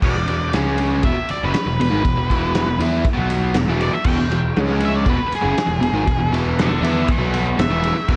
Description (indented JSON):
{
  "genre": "garage rock duo or trio",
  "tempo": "119 BPM",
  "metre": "4/4",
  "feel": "straight",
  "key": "E mixolydian",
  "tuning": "A4 = 439 Hz",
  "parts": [
    { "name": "overdriven electric guitar", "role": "riff", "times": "0.0-8.2 s", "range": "E2 to E4", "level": "-24 LUFS", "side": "equal", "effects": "none" },
    { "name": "fuzz picked electric bass", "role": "bass", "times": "0.0-8.2 s", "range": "E1 to E2", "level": "-25 LUFS", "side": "equal", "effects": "overdrive" },
    { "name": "raw garage drum kit", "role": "drums", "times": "0.0-8.2 s", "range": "crash cymbal, kick drum, ride cymbal, snare drum", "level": "-24 LUFS", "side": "equal", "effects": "vintage 12-bit sampler grit" },
    { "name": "octave-fuzz lead guitar", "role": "melody", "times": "0.1-8.2 s", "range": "G#4 to G5", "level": "-26 LUFS", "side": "equal", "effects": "distortion" }
  ],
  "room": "light reverb, small room ambience",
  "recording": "cassette tape",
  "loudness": "-19 LUFS",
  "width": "mono",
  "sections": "0.0-8.2 A section",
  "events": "lead electric guitar solo 0.0-8.2",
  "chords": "0.0 E5; 0.5 C#5; 1.0 E5; 4.6 C#5; 5.1 E"
}